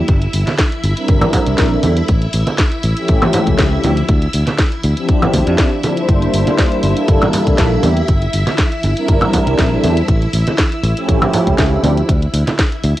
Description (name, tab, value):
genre	nu-disco, nu disco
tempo	120 BPM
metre	4/4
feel	swing 54% on 16ths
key	G dorian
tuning	A4 = 440 Hz
part	string machine, full ensemble	sustained chords	0.0-13.0 s	E4 to E5	-25 LUFS	equal	ensemble chorus, sidechain pumping, cassette tape
part	fingered electric bass	bass	0.1-12.9 s	G1 to F2	-16 LUFS	equal	none
part	electronic kick drum	drums	0.1-12.7 s	none	-15 LUFS	equal	cassette tape
part	house drum kit	drums	0.1-13.0 s	hi-hat, snare drum, woodblock	-20 LUFS	equal	cassette tape
part	congas	percussion	0.5-12.6 s	none	-19 LUFS	right 2 dB	none
part	warm analog pad	accompaniment	1.0-13.0 s	F3 to C5	-17 LUFS	equal	chorus, cassette tape, analog delay
room	light reverb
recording	home recording on cassette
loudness	-12 LUFS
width	side -15 dB against mid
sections	0.0-13.0 A section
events	filter sweep on analog synth pad 0.0-13.0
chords	0.0 Gm6; 2.1 A7b13; 3.8 Dm11; 6.1 Gm69; 10.1 A7b13; 11.8 Dsus2